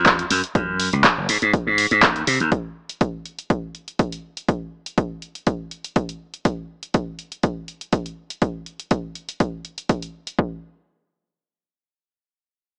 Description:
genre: filtered disco house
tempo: 122 BPM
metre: 4/4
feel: swing 54% on 16ths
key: unclear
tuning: A4 = 440 Hz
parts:
  - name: slap bass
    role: bass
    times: 0.0-2.5 s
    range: Gb1 to C3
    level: -22 LUFS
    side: equal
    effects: sidechain pumping, low-pass filter
  - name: electronic kick drum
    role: drums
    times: 0.1-10.5 s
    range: none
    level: -24 LUFS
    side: equal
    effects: none
  - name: punchy analog drum machine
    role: drums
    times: 0.1-10.4 s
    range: handclaps, hi-hat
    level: -23 LUFS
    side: equal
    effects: sidechain pumping on hats
room: little or no reverb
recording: dry, gritty hardware recording, small speaker sound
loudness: -23 LUFS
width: mono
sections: 0.0-10.4 A section; 10.4-12.8 B section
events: none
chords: none

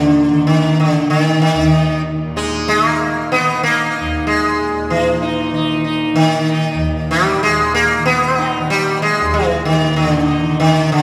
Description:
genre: indian classical, Hindustani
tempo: 95 BPM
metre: 4/4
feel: straight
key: unclear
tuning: A4 = 439 Hz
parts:
  - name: sitar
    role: melody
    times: 0.0-11.0 s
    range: D3 to Eb4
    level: -16 LUFS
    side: equal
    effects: none
  - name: tanpura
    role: drone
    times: 0.0-11.0 s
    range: Eb2 to Eb3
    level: -26 LUFS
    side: equal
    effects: none
room: wet church reverb, RT60 2.5 s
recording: recorded in a church or concert hall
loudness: -15 LUFS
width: mono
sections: 0.0-4.9 A section; 4.9-11.0 B section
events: none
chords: none

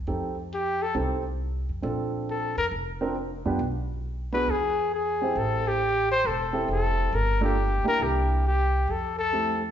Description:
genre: jazz, small-group swing and bop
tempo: 136 BPM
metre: 4/4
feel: swing 67% on 8ths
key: F major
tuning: A4 = 440 Hz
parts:
  - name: upright bass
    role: bass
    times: 0.0-9.7 s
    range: E1 to Gb2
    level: -29 LUFS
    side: equal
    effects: none
  - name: warm grand piano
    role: accompaniment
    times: 0.1-9.6 s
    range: A3 to C5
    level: -30 LUFS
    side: right 3 dB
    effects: none
  - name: mellow trumpet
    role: melody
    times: 0.5-9.6 s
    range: G4 to C5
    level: -25 LUFS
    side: left 2 dB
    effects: none
room: wet large studio reverb, RT60 1.3 s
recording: band playing live in one room, nothing above 7.6 kHz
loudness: -24 LUFS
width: side -9 dB against mid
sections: 0.0-9.7 A section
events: none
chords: 0.1 F7; 1.8 Bbmaj7; 3.6 Bm; 4.5 E; 5.4 Am7; 7.1 Gm7; 8.0 C7; 8.9 Fmaj7

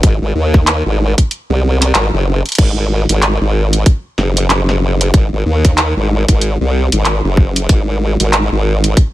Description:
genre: glitch hop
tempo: 94 BPM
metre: 4/4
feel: swing 59% on 16ths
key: unclear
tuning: A4 = 440 Hz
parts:
  - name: formant-sweep wobble bass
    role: bass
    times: 0.0-8.9 s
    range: F#1 to D#2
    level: -13 LUFS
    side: equal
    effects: chorus, tube saturation
  - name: drum and bass drum kit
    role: drums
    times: 0.0-9.1 s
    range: crash cymbal, handclaps, hi-hat, snare drum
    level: -17 LUFS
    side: equal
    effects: none
  - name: electronic kick drum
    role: drums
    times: 0.0-9.1 s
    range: none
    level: -10 LUFS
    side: equal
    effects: none
room: little or no reverb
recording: none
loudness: -11 LUFS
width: side -15 dB against mid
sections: 0.0-9.1 A section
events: kick drops out 1.3-2.6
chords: none

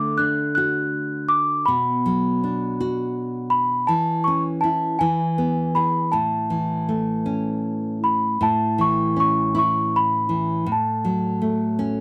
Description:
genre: children's music, lullaby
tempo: 53 BPM (dotted quarters)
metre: 6/8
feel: rubato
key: A major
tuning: A4 = 440 Hz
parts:
  - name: celesta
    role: melody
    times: 0.0-11.8 s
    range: G#5 to F#6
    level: -24 LUFS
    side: equal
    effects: none
  - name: nylon-string guitar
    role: accompaniment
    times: 0.0-12.0 s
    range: A2 to G#4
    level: -26 LUFS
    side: equal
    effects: none
room: light reverb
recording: dry, close 1970s-style studio recording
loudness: -22 LUFS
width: mono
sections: 0.0-8.4 A section; 8.4-12.0 A section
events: nylon-string guitar fill 11.8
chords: 0.0 D; 1.7 Bm; 3.9 A/E; 5.0 E; 6.1 A; 10.7 F#m/A

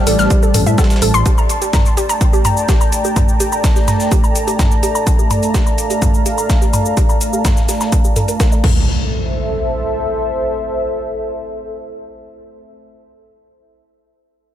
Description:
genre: melodic techno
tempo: 126 BPM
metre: 4/4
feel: straight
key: A phrygian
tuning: A4 = 440 Hz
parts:
  - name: expressive synth lead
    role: melody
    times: 0.0-1.2 s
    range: G3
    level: -21 LUFS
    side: equal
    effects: analog chorus, sidechain pumping, dub echo
  - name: dark analog pad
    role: sustained chords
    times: 0.0-12.9 s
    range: A3 to Bb5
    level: -20 LUFS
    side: equal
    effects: chorus, sidechain pumping
  - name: warbly dusty pluck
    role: arpeggios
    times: 0.1-9.1 s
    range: G4 to F6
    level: -22 LUFS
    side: right 1 dB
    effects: chorus, sidechain pumping, dub echo
  - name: swelling detuned saw bass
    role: bass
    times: 0.1-1.2 s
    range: A1 to A2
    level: -15 LUFS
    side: equal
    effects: sidechain pumping
  - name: dusty soul sampler-style drum kit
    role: drums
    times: 0.1-8.5 s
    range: hi-hat, snare drum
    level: -28 LUFS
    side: right 3 dB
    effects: overdrive, high-pass filter on hats, studio reverb, high-pass filter on snare
  - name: house drum kit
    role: drums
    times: 0.1-8.7 s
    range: crash cymbal, hi-hat, shaker, toms, woodblock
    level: -21 LUFS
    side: equal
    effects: studio reverb
  - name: electronic kick drum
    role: drums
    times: 0.3-8.7 s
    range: none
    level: -14 LUFS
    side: equal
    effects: studio reverb
  - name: impact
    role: sound effects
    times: 8.6-12.9 s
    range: none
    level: -22 LUFS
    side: equal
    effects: none
room: digital ambience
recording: none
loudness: -12 LUFS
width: side -11 dB against mid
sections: 0.0-8.9 A section; 8.9-12.7 B section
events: filter sweep on synth arpeggio sound 0.0-8.9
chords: 0.0 Am; 1.3 Gmadd9/A; 8.6 Am

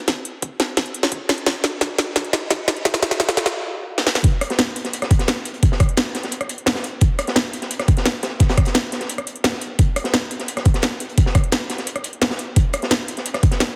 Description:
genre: drum and bass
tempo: 173 BPM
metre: 4/4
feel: straight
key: none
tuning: none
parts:
  - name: drum and bass drum kit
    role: drums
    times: 0.1-13.7 s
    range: hi-hat, rim click, snare drum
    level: -23 LUFS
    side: equal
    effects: high-pass filter on hats, high-pass filter on snare, high-pass filter on room
  - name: electronic kick drum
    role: drums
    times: 0.1-13.5 s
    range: none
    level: -18 LUFS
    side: equal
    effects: overdrive, high-pass filter on kick, high-pass filter on room
  - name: crunchy breakbeat drum kit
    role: drums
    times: 4.2-13.7 s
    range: hi-hat, snare drum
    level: -30 LUFS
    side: equal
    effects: high-pass filter on hats, high-pass filter on snare, high-pass filter on room
room: moderate lush hall reverb, RT60 1.9 s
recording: heavily compressed radio sound, multiband compression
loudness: -20 LUFS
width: mono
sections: 0.0-4.2 A section; 4.2-13.8 B section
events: build-up 0.0-4.2; drum fill 0.0-3.5, 4.0; stop 3.5-4.2; drop 4.2-13.8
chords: none

